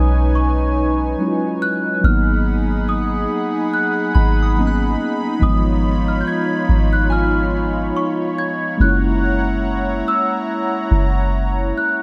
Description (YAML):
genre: contemporary R&B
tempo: 71 BPM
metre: 4/4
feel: swing 54% on 16ths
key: G# dorian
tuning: A4 = 440 Hz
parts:
  - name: celesta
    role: melody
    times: 0.0-12.0 s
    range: C#6 to G#6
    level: -26 LUFS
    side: equal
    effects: subtle chorus, diffuse ambient delay
  - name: mellow tine electric piano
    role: accompaniment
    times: 0.0-12.0 s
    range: E#3 to E#4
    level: -24 LUFS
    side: equal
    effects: none
  - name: warm analog pad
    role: sustained chords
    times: 0.0-12.0 s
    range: D#4 to B5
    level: -25 LUFS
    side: equal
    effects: chorus
  - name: soft 808-style bass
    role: bass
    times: 0.0-11.7 s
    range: F#1 to B1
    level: -20 LUFS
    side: equal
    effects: none
  - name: soft synth bell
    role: texture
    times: 0.0-9.2 s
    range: G#5 to F#6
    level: -34 LUFS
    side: equal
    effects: chorus, diffuse ambient delay
room: moderate lush hall reverb, RT60 2.2 s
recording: dreamy mix soaked in reverb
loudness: -18 LUFS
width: mono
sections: 0.0-12.0 A section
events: none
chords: 0.0 B69; 2.0 G#m7; 5.4 C#9/G#; 8.8 F#7